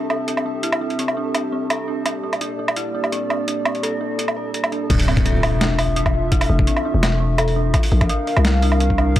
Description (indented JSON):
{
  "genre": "half-time drum and bass",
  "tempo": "169 BPM",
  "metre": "4/4",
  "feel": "half-time",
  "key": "D minor",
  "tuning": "A4 = 440 Hz",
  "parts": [
    { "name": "dark analog pad", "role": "sustained chords", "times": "0.0-9.2 s", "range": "Bb3 to F5", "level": "-25 LUFS", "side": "left 1 dB", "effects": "chorus, sidechain pumping" },
    { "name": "dark detuned synth bell", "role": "arpeggios", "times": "0.0-9.2 s", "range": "C4 to A4", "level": "-26 LUFS", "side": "right 2 dB", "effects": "chorus, phaser, analog delay" },
    { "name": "flickering grainy texture", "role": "texture", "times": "0.0-4.9 s", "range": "A4", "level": "-35 LUFS", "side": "right 1 dB", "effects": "built-in reverb" },
    { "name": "boom bap sampler-style drum kit", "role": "drums", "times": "0.1-9.2 s", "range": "crash cymbal, hi-hat, snare drum, woodblock", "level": "-22 LUFS", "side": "right 1 dB", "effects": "overdrive" },
    { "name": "growling 808-style bass", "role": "bass", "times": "4.9-9.2 s", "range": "D1 to C2", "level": "-18 LUFS", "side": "left 1 dB", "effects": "tube saturation" },
    { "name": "electronic kick drum", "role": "drums", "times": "4.9-9.2 s", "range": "none", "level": "-19 LUFS", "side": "left 1 dB", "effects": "overdrive" },
    { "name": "impact", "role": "sound effects", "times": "4.9-6.3 s", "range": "none", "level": "-28 LUFS", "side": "left 1 dB", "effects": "none" }
  ],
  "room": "digital ambience",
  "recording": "dry, gritty hardware recording",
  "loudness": "-17 LUFS",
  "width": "side -13 dB against mid",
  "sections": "0.0-4.9 A section; 4.9-9.2 B section",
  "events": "drop 4.9-9.2; impact 4.9-6.3",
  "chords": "0.0 C; 2.1 Gm; 4.9 Dmadd9; 7.7 Bb"
}